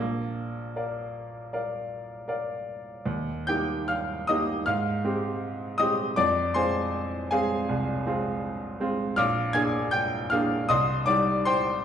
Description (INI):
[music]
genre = classical, romantic character piece for solo piano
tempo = 73-82 BPM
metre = 4/4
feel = rubato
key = Eb major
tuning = A4 = 440 Hz
[part]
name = bright baby grand piano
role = solo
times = 0.0-11.8 s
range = Bb1 to Ab6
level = -25 LUFS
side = equal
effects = none
[sound]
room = wet large studio reverb, RT60 1.3 s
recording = heard from further back in the room, nothing above 10.4 kHz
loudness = -24 LUFS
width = side -8 dB against mid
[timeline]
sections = 0.0-3.1 A section; 3.1-11.8 B section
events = none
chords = 0.0 Bb; 3.1 Eb; 4.7 Abmaj7; 6.2 Fm; 9.2 Bb7; 10.7 Cm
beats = 0.77 1.53 2.28 | 3.07 3.89 4.67 5.42 | 6.17 6.93 7.69 8.43 | 9.18 9.92 10.69 11.46